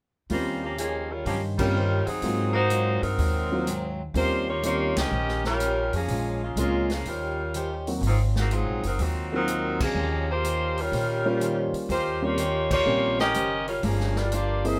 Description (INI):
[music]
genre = jazz, big band swing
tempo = 124 BPM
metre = 4/4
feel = swing 68% on 8ths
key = Eb mixolydian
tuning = A4 = 440 Hz
[part]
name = mellow saxophone section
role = melody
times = 0.3-14.8 s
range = Eb3 to Eb5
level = -29 LUFS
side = equal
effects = none
[part]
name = picked plugged-in swing-style acoustic guitar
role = accompaniment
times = 0.3-14.7 s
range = G2 to C5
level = -36 LUFS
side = equal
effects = none
[part]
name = warm concert grand piano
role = accompaniment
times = 0.3-14.8 s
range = Fb3 to Eb5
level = -32 LUFS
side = equal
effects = none
[part]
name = upright bass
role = bass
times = 0.3-14.8 s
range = Gb1 to Bb2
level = -31 LUFS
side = equal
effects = none
[part]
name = swinging big-band drum kit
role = drums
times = 0.3-14.7 s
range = crash cymbal, hi-hat, kick drum, ride cymbal, snare drum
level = -37 LUFS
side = equal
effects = none
[sound]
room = moderate club reverb, RT60 0.8 s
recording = none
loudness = -26 LUFS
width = mono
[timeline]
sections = 0.3-14.8 A section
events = band accent 1.5, 4.9, 9.7, 12.6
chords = 0.3 Eb13; 2.2 Ab13; 4.2 Eb13; 6.1 Bbm7; 7.1 Eb13; 8.0 Ab13; 10.0 Eb13; 13.8 Gm7